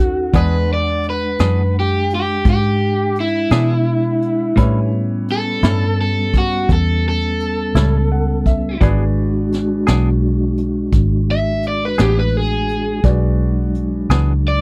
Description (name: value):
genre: slow blues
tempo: 57 BPM (dotted quarters)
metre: 12/8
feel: straight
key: E mixolydian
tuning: A4 = 441 Hz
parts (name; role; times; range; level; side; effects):
- overdriven semi-hollow guitar; melody; 0.0-14.6 s; E4 to E5; -22 LUFS; equal; none
- clear concert grand piano; accompaniment; 0.0-14.6 s; G3 to F#5; -32 LUFS; equal; none
- mellow tonewheel organ; sustained chords; 0.0-14.6 s; F#3 to G#5; -25 LUFS; equal; chorus vibrato, fast rotary speaker
- vintage muted fingered electric bass; bass; 0.0-14.6 s; G#1 to B2; -20 LUFS; equal; none
- clean electric guitar; accompaniment; 0.3-14.3 s; A2 to G#4; -24 LUFS; equal; tremolo
- vintage brush drum kit; drums; 0.3-14.3 s; hi-hat, kick drum, snare drum; -19 LUFS; equal; none
room: little or no reverb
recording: dry, close 1970s-style studio recording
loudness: -17 LUFS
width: mono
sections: 0.3-14.6 A section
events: overdriven electric guitar solo 0.3-14.6; grand piano fill 7.8-8.8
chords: 0.3 E7; 4.6 A7; 8.8 E7